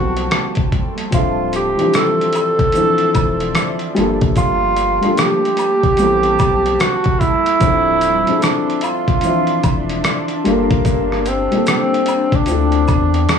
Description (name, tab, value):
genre	lo-fi hip hop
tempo	74 BPM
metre	4/4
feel	swing 63% on 16ths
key	D minor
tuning	A4 = 440 Hz
part	breathy tenor saxophone	melody	0.0-13.4 s	Bb3 to A4	-17 LUFS	right 2 dB	low-pass filter, analog delay
part	dark upright piano	accompaniment	0.0-13.4 s	E3 to E5	-21 LUFS	left 3 dB	low-pass filter
part	granular cloud pad	sustained chords	0.0-13.4 s	F3 to C6	-25 LUFS	equal	built-in reverb, low-pass filter
part	saturated sub bass	bass	0.0-13.3 s	D1 to E2	-22 LUFS	left 1 dB	none
part	dusty soul sampler-style drum kit	drums	0.2-13.4 s	hi-hat, kick drum, rim click	-18 LUFS	equal	overdrive
part	tube shaker and woodblock	percussion	1.1-13.4 s	none	-31 LUFS	left 1 dB	none
room	light reverb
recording	dry, gritty hardware recording, studio ambience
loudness	-13 LUFS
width	side -7 dB against mid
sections	0.0-13.4 A section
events	none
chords	0.0 Am9; 1.1 Dm9; 4.0 Gm9; 6.0 Am9; 7.6 Dm9; 10.5 Gm9; 12.5 Dm9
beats	0.32 | 1.13 1.94 2.75 3.56 | 4.37 5.18 5.99 6.80 | 7.61 8.43 9.24 10.05 | 10.86 11.67 12.48 13.29